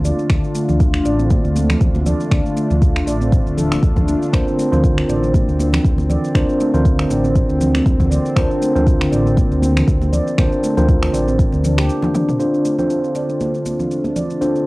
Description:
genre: afro house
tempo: 119 BPM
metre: 4/4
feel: swing 55% on 16ths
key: D minor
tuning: A4 = 440 Hz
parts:
  - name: warm analog pad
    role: sustained chords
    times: 0.0-14.7 s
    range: D3 to F4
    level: -22 LUFS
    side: left 1 dB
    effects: chorus, sidechain pumping, cassette tape
  - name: handpan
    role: arpeggios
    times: 0.0-14.7 s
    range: A3 to D5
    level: -24 LUFS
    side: equal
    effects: sidechain pumping, low-pass filter, cassette tape, analog delay
  - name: dark detuned saw bass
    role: bass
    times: 0.0-11.9 s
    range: D1 to D2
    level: -19 LUFS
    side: equal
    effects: sidechain pumping
  - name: deep house drum kit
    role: drums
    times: 0.0-14.6 s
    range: finger snaps, shaker, toms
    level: -26 LUFS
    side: equal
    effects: overdrive, cassette tape
  - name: congas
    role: percussion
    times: 0.1-14.5 s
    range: none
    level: -25 LUFS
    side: right 1 dB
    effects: none
  - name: electronic kick drum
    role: drums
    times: 0.3-11.5 s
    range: none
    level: -16 LUFS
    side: equal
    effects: cassette tape
  - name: mellow tine electric piano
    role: stabs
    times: 4.3-14.7 s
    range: C4 to C5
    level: -20 LUFS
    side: right 1 dB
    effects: medium stereo tremolo, sidechain pumping, low-pass filter, cassette tape, analog delay
room: light reverb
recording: home recording on cassette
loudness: -14 LUFS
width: side -21 dB against mid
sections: 0.0-12.4 A section; 12.4-14.7 B section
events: break 11.9-12.4; drum fill 12.0-12.4; filter sweep on handpan 12.4-14.7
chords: 0.0 Dm; 4.3 Bbadd9; 12.4 Dm7

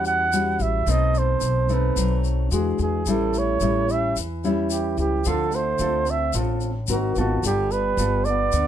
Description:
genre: bossa nova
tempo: 110 BPM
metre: 4/4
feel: straight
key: unclear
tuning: A4 = 444 Hz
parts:
  - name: breathy flugelhorn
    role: melody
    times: 0.0-8.7 s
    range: Gb4 to F#5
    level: -24 LUFS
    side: right 4 dB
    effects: none
  - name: nylon-string guitar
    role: accompaniment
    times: 0.0-8.7 s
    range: A2 to Bb4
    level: -26 LUFS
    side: left 2 dB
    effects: none
  - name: upright bass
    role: bass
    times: 0.0-8.7 s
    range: G1 to E2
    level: -25 LUFS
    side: left 1 dB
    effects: none
  - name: tube shaker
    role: percussion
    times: 0.1-8.7 s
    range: none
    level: -33 LUFS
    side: left 10 dB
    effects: none
  - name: breathy trombone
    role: second line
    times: 2.5-8.7 s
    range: D3 to C#4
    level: -32 LUFS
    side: left 5 dB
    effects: none
room: light reverb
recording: close, detailed microphones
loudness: -20 LUFS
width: side -10 dB against mid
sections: 0.0-8.7 A section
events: none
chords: 0.0 A6; 0.9 B7b9; 2.5 E9; 3.1 A7; 5.3 Dm7; 6.9 Ab9; 7.4 G9

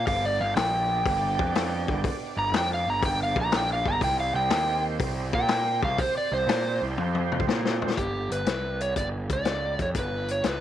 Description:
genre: blues rock power trio and southern rock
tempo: 122 BPM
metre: 4/4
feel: swing 68% on 8ths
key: G mixolydian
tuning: A4 = 440 Hz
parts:
  - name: overdriven slide guitar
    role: melody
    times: 0.0-10.6 s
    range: G4 to Bb5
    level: -27 LUFS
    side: right 1 dB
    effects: none
  - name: overdriven tonewheel organ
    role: sustained chords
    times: 0.0-7.9 s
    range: B3 to D5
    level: -36 LUFS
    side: right 12 dB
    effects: slow rotary speaker, chorus vibrato
  - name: fuzz picked electric bass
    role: bass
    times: 0.0-10.6 s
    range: G1 to Bb2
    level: -30 LUFS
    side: right 1 dB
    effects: overdrive
  - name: vintage drum kit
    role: drums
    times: 0.1-10.6 s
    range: hi-hat, kick drum, snare drum, toms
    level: -29 LUFS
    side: left 4 dB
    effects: none
room: light reverb, small room ambience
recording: 1960s-style stereo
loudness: -24 LUFS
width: side -11 dB against mid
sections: 0.0-8.0 A section; 8.0-10.6 B section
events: electric slide guitar solo 0.0-8.0; drum fill 7.0-8.0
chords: 0.1 G; 4.0 C5; 8.0 G

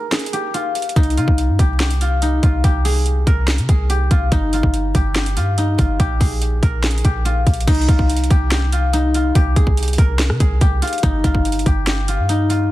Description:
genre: hip hop, trap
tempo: 143 BPM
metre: 4/4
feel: half-time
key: C minor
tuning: A4 = 440 Hz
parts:
  - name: guzheng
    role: melody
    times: 0.0-12.7 s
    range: Eb4 to Bb4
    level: -21 LUFS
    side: left 1 dB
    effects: low-pass filter, digital delay
  - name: trap drum kit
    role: drums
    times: 0.1-12.6 s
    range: crash cymbal, handclaps, hi-hat, kick drum, rim click, snare drum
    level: -18 LUFS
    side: equal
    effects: none
  - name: clean 808-style bass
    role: bass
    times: 1.0-12.7 s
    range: G1 to C3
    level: -17 LUFS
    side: equal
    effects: none
room: little or no reverb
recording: dense, heavily limited modern master, vinyl crackle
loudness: -14 LUFS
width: side -16 dB against mid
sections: 0.0-7.7 A section; 7.7-12.7 B section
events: break 0.0-1.0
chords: 0.0 N.C.; 1.0 C5; 4.3 Ebadd9/G; 6.0 Bb5; 7.7 Cmadd11; 11.0 Ebadd9/G

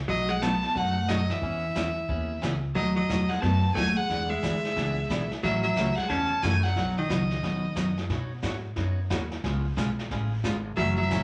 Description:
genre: country, western swing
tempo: 180 BPM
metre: 4/4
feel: swing 63% on 8ths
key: unclear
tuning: A4 = 440 Hz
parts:
  - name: upright bass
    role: bass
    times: 0.0-11.2 s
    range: F#1 to B2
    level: -33 LUFS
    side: equal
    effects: none
  - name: clear fiddle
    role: melody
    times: 0.1-7.9, 10.8-11.2 s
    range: D#5 to A5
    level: -32 LUFS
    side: equal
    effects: none
  - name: vintage hollow-body jazz guitar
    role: second line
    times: 0.1-7.9, 10.8-11.2 s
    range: D#3 to C#4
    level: -34 LUFS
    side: equal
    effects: none
  - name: picked steel-string acoustic guitar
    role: accompaniment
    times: 0.1-11.2 s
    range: B2 to C#5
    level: -33 LUFS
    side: equal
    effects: none
  - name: vintage brush drum kit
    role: drums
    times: 0.1-11.2 s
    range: brushed snare drum, hi-hat, kick drum, snare drum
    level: -38 LUFS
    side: equal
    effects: none
room: wet large studio reverb, RT60 0.8 s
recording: none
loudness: -27 LUFS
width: mono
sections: 0.0-2.8 A section; 2.8-11.2 B section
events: none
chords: 0.1 B7; 1.4 E6; 2.8 B7; 4.1 E7; 5.4 A6; 6.8 B; 8.1 Badd9; 9.4 C#7

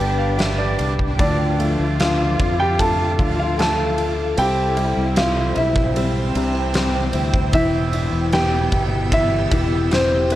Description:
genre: pop ballad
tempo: 76 BPM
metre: 4/4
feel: straight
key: C major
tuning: A4 = 438 Hz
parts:
  - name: warm grand piano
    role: melody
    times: 0.0-10.4 s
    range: C4 to A5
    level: -22 LUFS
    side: equal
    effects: digital delay
  - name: rich studio cello section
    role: second line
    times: 0.0-10.4 s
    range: B2 to F4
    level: -27 LUFS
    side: left 1 dB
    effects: none
  - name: clear concert grand piano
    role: accompaniment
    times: 0.0-10.4 s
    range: C3 to G5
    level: -26 LUFS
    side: equal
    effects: none
  - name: ethereal airy pad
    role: sustained chords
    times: 0.0-10.4 s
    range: G4 to E6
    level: -28 LUFS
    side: equal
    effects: ensemble chorus, built-in reverb, phaser
  - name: direct-recorded clean electric guitar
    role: arpeggios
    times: 0.0-10.4 s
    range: G2 to A4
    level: -30 LUFS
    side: left 4 dB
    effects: none
  - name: fingered electric bass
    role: bass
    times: 0.0-10.4 s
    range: E1 to F2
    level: -23 LUFS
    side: equal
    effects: none
  - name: huge arena drum kit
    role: drums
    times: 0.4-10.4 s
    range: kick drum, ride cymbal, snare drum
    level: -24 LUFS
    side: equal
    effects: none
room: light reverb, small room ambience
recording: worn, warbling old tape, cassette tape, warbly pitch drift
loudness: -16 LUFS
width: side -14 dB against mid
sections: 0.0-10.4 A section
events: grand piano fill 0.0-1.2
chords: 0.0 G; 1.2 Dm; 4.4 C; 7.5 Em

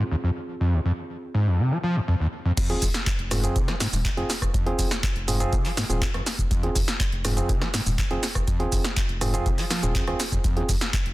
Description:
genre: acid house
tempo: 122 BPM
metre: 4/4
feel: straight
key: F minor pentatonic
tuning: A4 = 442 Hz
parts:
  - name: overdriven acid bass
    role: riff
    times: 0.0-10.8 s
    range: Eb2 to F3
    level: -26 LUFS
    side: equal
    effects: distortion, ensemble chorus, cassette tape, digital delay
  - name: barky tine electric piano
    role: stabs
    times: 0.0-10.7 s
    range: C4 to Ab4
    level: -31 LUFS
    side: right 2 dB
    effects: vintage 12-bit sampler grit, digital delay
  - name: electronic kick drum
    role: drums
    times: 2.6-11.0 s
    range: none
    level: -26 LUFS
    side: equal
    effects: none
  - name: punchy analog drum machine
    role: drums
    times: 2.6-11.1 s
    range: crash cymbal, handclaps, hi-hat, rim click, shaker, snare drum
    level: -28 LUFS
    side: equal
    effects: none
  - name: saturated sub bass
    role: bass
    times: 2.8-11.1 s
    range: Eb1 to F1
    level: -29 LUFS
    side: equal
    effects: sidechain pumping
room: little or no reverb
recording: dense, heavily limited modern master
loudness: -22 LUFS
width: side -18 dB against mid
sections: 0.0-2.6 A section; 2.6-11.1 B section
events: filter sweep on tine electric piano 0.0-2.6; drop 2.6-11.1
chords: 0.0 Fm

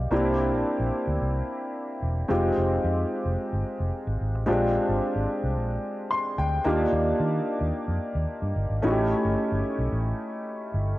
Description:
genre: polished 1980s jazz-funk pop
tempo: 110 BPM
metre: 4/4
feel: straight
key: C minor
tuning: A4 = 441 Hz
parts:
  - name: warm concert grand piano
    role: accompaniment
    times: 0.0-11.0 s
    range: Ab3 to C6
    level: -26 LUFS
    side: equal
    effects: analog chorus, cassette tape
  - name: vintage muted fingered electric bass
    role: bass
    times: 0.0-10.9 s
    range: E1 to Eb3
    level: -27 LUFS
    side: equal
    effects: none
room: light reverb, studio ambience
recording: home recording on cassette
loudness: -24 LUFS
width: side -17 dB against mid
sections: 0.0-11.0 A section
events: grand piano fill 5.8-6.7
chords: 0.1 C7; 2.3 Fm9; 4.5 Bb13; 6.7 Ebmaj9; 8.8 A7#11

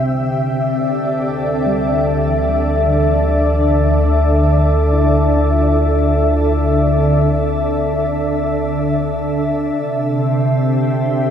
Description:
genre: ambient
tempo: free time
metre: none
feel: none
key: unclear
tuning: A4 = 440 Hz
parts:
  - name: glassy FM pad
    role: sustained chords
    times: 0.0-11.3 s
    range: C3 to G5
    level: -15 LUFS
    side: equal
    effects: ensemble chorus, built-in reverb
  - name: muted felt-like synth keys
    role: arpeggios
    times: 0.0-10.5 s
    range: D3 to D5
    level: -30 LUFS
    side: equal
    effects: none
  - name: deep rumbling drone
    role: bass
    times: 1.7-11.3 s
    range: C2 to D2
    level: -18 LUFS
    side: equal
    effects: built-in reverb
room: wet cathedral reverb, RT60 5.7 s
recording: in a vast, echoing space, cassette tape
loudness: -14 LUFS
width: side -8 dB against mid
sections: 0.0-9.8 A section; 9.8-11.3 A section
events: none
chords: 0.1 Dmadd9; 9.8 C

